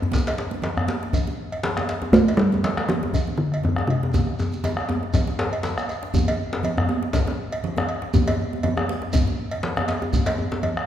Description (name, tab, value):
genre	west african traditional, West African drum ensemble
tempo	120 BPM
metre	4/4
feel	swing 56% on 16ths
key	unclear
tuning	A4 = 439 Hz
part	djembe	percussion	0.0-10.6 s	none	-32 LUFS	left 5 dB	none
part	djembe	percussion	0.0-10.8 s	none	-26 LUFS	left 2 dB	none
part	bombo	percussion	0.1-10.9 s	none	-27 LUFS	equal	none
part	congas	percussion	0.1-10.8 s	none	-30 LUFS	right 4 dB	none
part	shekere	percussion	0.1-10.3 s	none	-34 LUFS	equal	none
part	cowbell	percussion	0.3-10.8 s	none	-32 LUFS	right 2 dB	none
part	talking drum	melody	2.1-5.6 s	C3 to A3	-20 LUFS	right 1 dB	none
room	wet recital hall reverb, RT60 1.8 s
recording	recorded in a church or concert hall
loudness	-21 LUFS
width	side -10 dB against mid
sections	0.0-6.1 A section; 6.1-10.9 B section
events	drum fill 4.1-6.1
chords	none